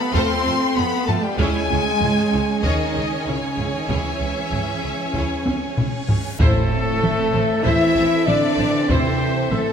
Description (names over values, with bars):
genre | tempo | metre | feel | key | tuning
cinematic, epic orchestral film score | 96 BPM | 4/4 | straight | unclear | A4 = 443 Hz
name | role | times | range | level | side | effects
warm symphonic violin section | melody | 0.0-9.7 s | A4 to C6 | -27 LUFS | left 5 dB | none
clear trombone section | sustained chords | 0.0-9.7 s | C#3 to C4 | -29 LUFS | right 5 dB | none
mellow French horn section | sustained chords | 0.0-9.7 s | C#3 to E4 | -24 LUFS | left 3 dB | none
warm symphonic string section | sustained chords | 0.0-9.7 s | A3 to G#5 | -28 LUFS | equal | none
rich symphonic cello section | bass | 0.0-9.7 s | A2 to C4 | -27 LUFS | right 3 dB | none
rich symphonic violin section | second line | 0.1-9.7 s | E4 to E5 | -31 LUFS | left 2 dB | none
rich symphonic viola section | accompaniment | 0.1-9.6 s | A3 to A5 | -30 LUFS | right 1 dB | none
warm studio double bass section | bass | 0.1-9.6 s | A1 to F2 | -28 LUFS | right 4 dB | none
taiko ensemble | drums | 0.1-9.7 s | none | -24 LUFS | equal | none
reverse cymbal and impact | sound effects | 6.0-8.9 s | none | -30 LUFS | equal | none
mellow concert flute | second line | 6.4-9.7 s | A4 to E5 | -28 LUFS | equal | none
warm trumpet section | stabs | 6.4-9.7 s | A4 to E5 | -27 LUFS | right 2 dB | none
timpani | percussion | 6.4-7.3 s | A2 | -26 LUFS | left 1 dB | none
room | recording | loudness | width
moderate concert hall reverb, RT60 2.2 s | none | -17 LUFS | side -7 dB against mid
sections
0.0-6.4 A section; 6.4-9.7 B section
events
drum fill 5.5-6.4; reverse cymbal 6.0-6.4; impact 6.4-8.9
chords
0.0 F; 1.4 C#m; 6.4 Am